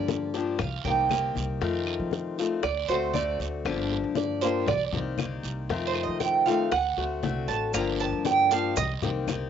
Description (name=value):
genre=latin, Cuban son and guajira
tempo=117 BPM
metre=4/4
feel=straight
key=G minor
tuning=A4 = 438 Hz
part: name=picked old ladder-braced acoustic guitar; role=accompaniment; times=0.0-9.5 s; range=C3 to G4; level=-29 LUFS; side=left 7 dB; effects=cassette tape
part: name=Cuban tres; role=arpeggios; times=0.0-8.9 s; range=C5 to Bb5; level=-27 LUFS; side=right 7 dB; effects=cassette tape
part: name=upright bass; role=bass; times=0.0-9.5 s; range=G1 to F3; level=-34 LUFS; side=right 1 dB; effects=none
part: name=bongos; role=percussion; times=0.1-9.5 s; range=none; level=-34 LUFS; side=left 10 dB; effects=none
part: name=congas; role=percussion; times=0.1-9.5 s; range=none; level=-35 LUFS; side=left 5 dB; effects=none
part: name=guiro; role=percussion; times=0.1-9.5 s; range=none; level=-40 LUFS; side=right 10 dB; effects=none
part: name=claves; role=percussion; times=0.6-9.5 s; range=none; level=-40 LUFS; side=left 8 dB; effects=none
part: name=maracas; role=percussion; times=7.7-9.5 s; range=none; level=-38 LUFS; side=right 11 dB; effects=none
room=moderate spring reverb, RT60 1.4 s, small room ambience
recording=home recording on cassette, nothing above 7.7 kHz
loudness=-24 LUFS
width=side -8 dB against mid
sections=0.0-9.5 A section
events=Cuban tres solo 0.0-9.5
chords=0.0 Gm7; 0.6 Cm7; 1.6 F7; 2.6 D7; 3.7 Gm7; 4.7 Cm7; 5.7 F7; 6.7 D7; 7.7 Gm7; 8.8 Cm7